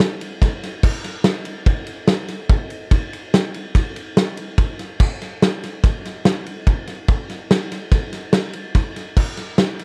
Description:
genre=rock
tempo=144 BPM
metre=5/4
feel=straight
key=none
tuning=none
part: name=loose indie drum kit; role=drums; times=0.0-9.8 s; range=crash cymbal, kick drum, ride cymbal, snare drum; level=-20 LUFS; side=equal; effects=none
room=little or no reverb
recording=none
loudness=-20 LUFS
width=mono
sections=0.0-9.8 A section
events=none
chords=none

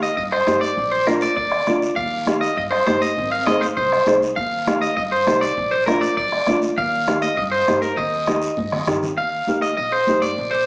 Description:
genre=latin, cumbia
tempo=200 BPM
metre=4/4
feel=straight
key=Eb major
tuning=A4 = 440 Hz
part: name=electric guitar at the edge of break-up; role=melody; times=0.0-10.7 s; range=Bb4 to F5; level=-22 LUFS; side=equal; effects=spring reverb
part: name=dark upright piano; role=accompaniment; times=0.0-10.3 s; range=D4 to C5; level=-26 LUFS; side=equal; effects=none
part: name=upright bass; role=bass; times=0.0-10.6 s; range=Ab1 to G2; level=-36 LUFS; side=equal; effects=none
part: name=guiro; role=percussion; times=0.0-10.7 s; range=none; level=-39 LUFS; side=equal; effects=none
part: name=bombo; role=percussion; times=0.2-9.0 s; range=none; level=-30 LUFS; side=equal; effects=none
part: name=congas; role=percussion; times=0.2-10.5 s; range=none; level=-31 LUFS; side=equal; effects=none
room=wet studio reverb, RT60 0.5 s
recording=heard from further back in the room, small speaker sound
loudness=-20 LUFS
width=mono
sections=0.0-9.2 A section; 9.2-10.7 B section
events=drum fill 8.6-9.2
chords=0.0 Eb; 0.8 Bb; 2.0 Eb; 3.2 Ab; 4.4 Eb; 5.6 Bb; 6.8 Eb

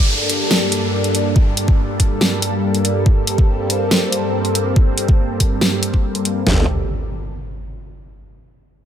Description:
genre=heavy wobble dubstep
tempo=141 BPM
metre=4/4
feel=half-time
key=G minor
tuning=A4 = 440 Hz
part: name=lush unison pad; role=sustained chords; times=0.0-6.7 s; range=G2 to D5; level=-19 LUFS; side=equal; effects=chorus, phaser, sidechain pumping
part: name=downlifter and impact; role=sound effects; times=0.0-3.1, 6.5-8.2 s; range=none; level=-25 LUFS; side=equal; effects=none
part: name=dubstep drum kit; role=drums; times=0.3-6.3 s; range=hi-hat, snare drum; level=-19 LUFS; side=equal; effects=none
part: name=dubstep drum kit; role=drums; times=1.4-6.6 s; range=kick drum, snare drum, toms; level=-14 LUFS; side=equal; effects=overdrive
part: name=formant-sweep wobble bass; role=bass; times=6.5-6.7 s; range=G1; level=-16 LUFS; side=equal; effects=chorus, overdrive
room=digital ambience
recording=none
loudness=-14 LUFS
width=side -9 dB against mid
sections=0.0-6.5 A section; 6.5-8.2 B section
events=none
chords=0.0 Gmadd9

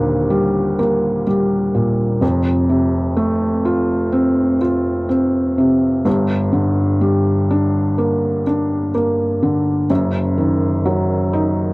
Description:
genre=folk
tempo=63 BPM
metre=4/4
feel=straight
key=unclear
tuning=A4 = 442 Hz
part: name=felt-muted upright piano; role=solo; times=0.0-11.7 s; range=Eb1 to F4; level=-15 LUFS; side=equal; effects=none
room=moderate booth ambience, RT60 0.2 s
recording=dry, close 1970s-style studio recording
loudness=-15 LUFS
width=side -24 dB against mid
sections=0.0-11.7 A section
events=none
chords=0.0 Ebmaj7; 2.2 F; 6.1 Gm; 9.9 Ebm/Gb

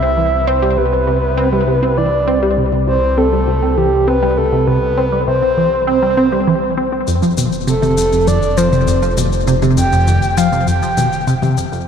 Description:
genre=ambient, sequencer-driven space music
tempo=100 BPM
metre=4/4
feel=straight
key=unclear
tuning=A4 = 440 Hz
part: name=breathy flute-like synth lead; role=melody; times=0.0-11.5 s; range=G4 to G5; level=-16 LUFS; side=equal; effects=chorus, ping-pong delay
part: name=tight sequenced synth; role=riff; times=0.0-11.9 s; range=F2 to C4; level=-16 LUFS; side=equal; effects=chorus, phaser, ping-pong delay
part: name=fat analog bass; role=bass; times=0.0-11.8 s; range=F1 to C2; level=-20 LUFS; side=equal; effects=none
part: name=electronic shaker and toms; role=percussion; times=7.1-11.8 s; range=none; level=-23 LUFS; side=left 4 dB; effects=overdrive, ping-pong delay
room=wet cathedral reverb, RT60 5.9 s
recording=in a vast, echoing space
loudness=-12 LUFS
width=side -7 dB against mid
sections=0.0-11.9 A section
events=fade-out 10.3-11.9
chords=0.0 Cmaj7(no3); 7.1 Fadd9

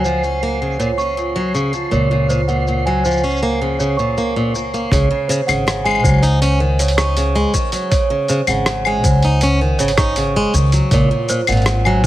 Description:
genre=folktronica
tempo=80 BPM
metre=4/4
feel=straight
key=unclear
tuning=A4 = 440 Hz
part: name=large celesta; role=second line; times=0.0-12.1 s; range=C5 to Db6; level=-20 LUFS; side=right 2 dB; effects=ping-pong delay
part: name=picked plugged-in swing-style acoustic guitar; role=arpeggios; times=0.0-12.1 s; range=Bb2 to Eb4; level=-20 LUFS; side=equal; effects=ping-pong delay
part: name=upright bass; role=bass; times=0.0-12.1 s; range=Ab1 to Db2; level=-18 LUFS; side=equal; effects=none
part: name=lo-fi sampler-style drum kit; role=drums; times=0.0-12.1 s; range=claves, hi-hat, rim click, shaker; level=-21 LUFS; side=left 2 dB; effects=overdrive, low-pass filter on perc, low-pass filter on hats, low-pass filter on snare
part: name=flickering grainy texture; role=texture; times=0.0-4.9 s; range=C7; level=-30 LUFS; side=right 2 dB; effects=built-in reverb
part: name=electronic kick drum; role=drums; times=4.9-12.1 s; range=none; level=-17 LUFS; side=equal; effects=overdrive
room=light reverb, small room ambience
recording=vinyl crackle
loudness=-14 LUFS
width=side -14 dB against mid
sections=0.0-4.9 A section; 4.9-12.1 B section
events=none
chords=0.0 Gb/Db; 4.9 Ab7sus4; 10.9 Gb

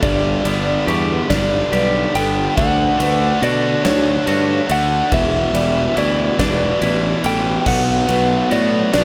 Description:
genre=post-rock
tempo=47 BPM (dotted quarters)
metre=6/8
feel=straight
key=unclear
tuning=A4 = 441 Hz
part: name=electric slide guitar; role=melody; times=0.0-9.0 s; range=C#5 to G5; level=-22 LUFS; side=equal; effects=tape echo
part: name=glassy FM pad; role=sustained chords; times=0.0-9.0 s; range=D3 to D5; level=-33 LUFS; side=equal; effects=none
part: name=felt-muted upright piano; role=arpeggios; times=0.0-9.0 s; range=D4 to C#6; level=-30 LUFS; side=equal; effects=none
part: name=twangy electric guitar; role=arpeggios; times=0.0-9.0 s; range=E2 to G4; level=-28 LUFS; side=equal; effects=spring reverb, tape echo
part: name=distorted electric guitar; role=riff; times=0.0-9.0 s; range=E2 to D4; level=-23 LUFS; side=equal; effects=overdrive
part: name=fuzz fingered electric bass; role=bass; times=0.0-9.0 s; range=E1 to B2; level=-23 LUFS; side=equal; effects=overdrive
part: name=huge arena drum kit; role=drums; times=0.0-9.0 s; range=crash cymbal, kick drum, ride cymbal, snare drum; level=-27 LUFS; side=equal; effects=none
part: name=raw garage guitar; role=riff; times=7.7-9.0 s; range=B2 to B3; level=-24 LUFS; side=equal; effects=none
room=light reverb, small room ambience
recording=none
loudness=-17 LUFS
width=mono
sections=0.0-9.0 A section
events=none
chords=0.0 G; 2.6 Dmaj7; 5.1 Em7; 7.7 Bm7

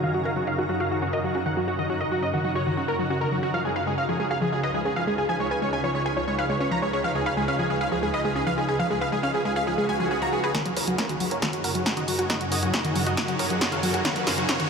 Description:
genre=uplifting trance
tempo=137 BPM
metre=4/4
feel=straight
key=F# major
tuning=A4 = 440 Hz
part: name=dense compressed supersaw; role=melody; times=0.0-14.7 s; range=F#4 to A#5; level=-27 LUFS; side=right 1 dB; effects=sidechain pumping, low-pass filter, tape echo
part: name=wide unison pluck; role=second line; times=0.0-10.5 s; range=F#4 to A#5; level=-32 LUFS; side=equal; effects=none
part: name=shimmering ambient pad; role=sustained chords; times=0.0-14.7 s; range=C#2 to B4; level=-29 LUFS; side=right 1 dB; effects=chorus, built-in reverb, sidechain pumping
part: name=wide unison pluck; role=arpeggios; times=0.0-14.7 s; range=D#3 to B4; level=-29 LUFS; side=left 2 dB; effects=cassette tape, sidechain pumping, ping-pong delay
part: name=swell and riser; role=sound effects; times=9.8-14.7 s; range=none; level=-34 LUFS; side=right 2 dB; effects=none
part: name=electronic kick drum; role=drums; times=10.5-14.6 s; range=none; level=-35 LUFS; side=equal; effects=none
part: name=punchy analog drum machine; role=drums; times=10.5-14.7 s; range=hi-hat, snare drum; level=-27 LUFS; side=equal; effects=sidechain pumping on hats, sidechain pumping on cymbals
room=wet huge ambient reverb, RT60 8.0 s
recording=dreamy mix soaked in reverb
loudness=-23 LUFS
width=side -5 dB against mid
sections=0.0-10.5 A section; 10.5-14.7 B section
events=filter sweep on synth arpeggio sound 0.0-10.5; filter sweep on synth pluck 0.0-10.5; swell 9.8-10.5; build-up 10.5-14.7; drum fill 10.5-14.7; filter sweep on supersaw synth 10.5-14.7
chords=0.0 F#6; 3.5 C#7; 10.5 F#6

